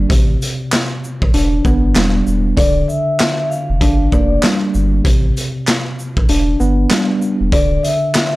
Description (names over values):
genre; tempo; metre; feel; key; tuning
hip hop, boom-bap hip-hop; 97 BPM; 4/4; swing 60% on 16ths; D minor; A4 = 438 Hz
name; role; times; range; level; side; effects
tine electric piano; accompaniment; 0.0-8.4 s; C3 to D4; -18 LUFS; equal; medium stereo tremolo, high-pass filter, low-pass filter
sub bass with octave; bass; 0.0-7.8 s; D1 to A1; -16 LUFS; equal; transformer saturation
raw garage drum kit; drums; 0.1-8.3 s; handclaps, hi-hat, kick drum, shaker, snare drum; -17 LUFS; equal; none
vibraphone with soft mallets; melody; 2.6-8.4 s; D5 to F5; -19 LUFS; left 2 dB; high-pass filter, low-pass filter
room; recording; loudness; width
little or no reverb; none; -13 LUFS; side -19 dB against mid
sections
0.0-8.4 A section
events
none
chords
0.1 Am; 1.3 Em7; 2.6 Dmadd9; 3.8 Gm7; 5.0 Am; 6.3 Em7; 7.5 Dsus2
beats
| 0.10 0.72 1.34 1.96 | 2.58 3.19 3.81 4.43 | 5.05 5.67 6.29 6.91 | 7.52 8.14